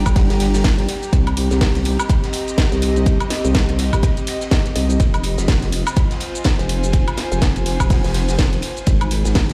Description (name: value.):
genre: bass house.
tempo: 124 BPM.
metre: 4/4.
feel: swing 59% on 16ths.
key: unclear.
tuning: A4 = 440 Hz.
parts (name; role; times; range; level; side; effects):
vowel-sweep wobble bass; bass; 0.0-9.5 s; F1 to C2; -21 LUFS; equal; chorus, overdrive, sidechain pumping.
airy breathy pad; texture; 0.0-9.5 s; C4 to C6; -29 LUFS; equal; chorus, sidechain pumping.
electronic kick drum; drums; 0.1-9.5 s; none; -19 LUFS; equal; none.
garage drum kit; drums; 0.1-9.5 s; hi-hat, shaker, snare drum, woodblock; -27 LUFS; equal; none.
raw garage drum kit; drums; 0.1-9.5 s; hi-hat, ride cymbal, snare drum; -35 LUFS; equal; high-pass filter on cymbals, high-pass filter on hats, high-pass filter on snare, high-pass filter on room.
room: light reverb.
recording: played on a big sound system in a bare room, stone room reverb.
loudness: -18 LUFS.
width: mono.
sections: 0.0-9.5 A section.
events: none.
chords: 0.0 Gm; 1.1 Cm; 5.0 Fm; 8.9 Ab.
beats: 0.16 0.64 | 1.13 1.61 2.10 2.58 | 3.06 3.55 4.03 4.51 | 5.00 5.48 5.97 6.45 | 6.93 7.42 7.90 8.39 | 8.87 9.35.